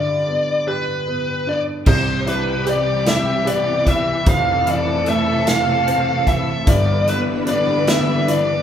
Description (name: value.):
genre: six-eight pop ballad.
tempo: 50 BPM (dotted quarters).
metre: 6/8.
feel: straight.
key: C major.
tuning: A4 = 443 Hz.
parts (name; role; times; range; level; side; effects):
bluesy overdriven lead guitar; melody; 0.0-8.6 s; B4 to F5; -19 LUFS; left 1 dB; distortion.
clear upright piano; accompaniment; 0.0-8.6 s; F1 to G4; -22 LUFS; right 2 dB; none.
warm studio string section; sustained chords; 1.9-8.6 s; C3 to B4; -22 LUFS; left 1 dB; none.
twelve-string electric guitar; arpeggios; 1.9-8.6 s; G3 to B4; -29 LUFS; left 4 dB; none.
natural country drum kit; drums; 1.9-8.5 s; crash cymbal, hi-hat, kick drum, snare drum; -20 LUFS; equal; none.
room: moderate large studio reverb, RT60 1.5 s.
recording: band playing live in one room.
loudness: -16 LUFS.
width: side -9 dB against mid.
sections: 0.0-1.9 A section; 1.9-8.6 B section.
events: none.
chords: 0.0 G; 1.9 Cmaj7; 4.3 Fmaj7; 6.7 G6.